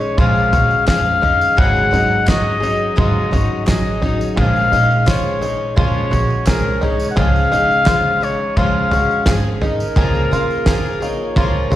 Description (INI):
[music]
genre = indie folk with a building arrangement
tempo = 86 BPM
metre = 4/4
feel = straight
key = Db major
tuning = A4 = 440 Hz
[part]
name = mellow trumpet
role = melody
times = 0.0-11.8 s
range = Bb4 to Gb5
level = -18 LUFS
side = left 2 dB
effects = slapback echo
[part]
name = picked twelve-string acoustic guitar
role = accompaniment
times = 0.0-11.8 s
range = Ab2 to Ab4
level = -21 LUFS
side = left 2 dB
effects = slapback echo
[part]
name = bluegrass banjo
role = arpeggios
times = 0.0-11.8 s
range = Eb4 to Ab4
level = -26 LUFS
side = right 3 dB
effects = slapback echo
[part]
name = tambourine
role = percussion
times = 0.0-11.8 s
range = none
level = -39 LUFS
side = right 4 dB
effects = none
[part]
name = upright bass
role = bass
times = 0.2-11.8 s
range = Ab1 to Db3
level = -20 LUFS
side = right 1 dB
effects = none
[part]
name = cloth-damped thuddy drum kit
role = drums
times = 0.2-11.8 s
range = kick drum, snare drum, toms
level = -17 LUFS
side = equal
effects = none
[part]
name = group handclap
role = percussion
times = 0.9-10.8 s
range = none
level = -34 LUFS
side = left 1 dB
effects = none
[sound]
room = light reverb, studio reverb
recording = live gig heard through the venue's PA, recital hall reverb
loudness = -13 LUFS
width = side -13 dB against mid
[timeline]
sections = 0.0-11.8 A section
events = none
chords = 0.0 Bbm7; 1.6 Ab7sus4; 4.4 Bbm7; 7.2 Db; 10.0 Db6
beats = 0.18 0.88 | 1.58 2.28 2.98 3.68 | 4.38 5.08 5.78 6.48 | 7.18 7.88 8.58 9.28 | 9.97 10.68 11.38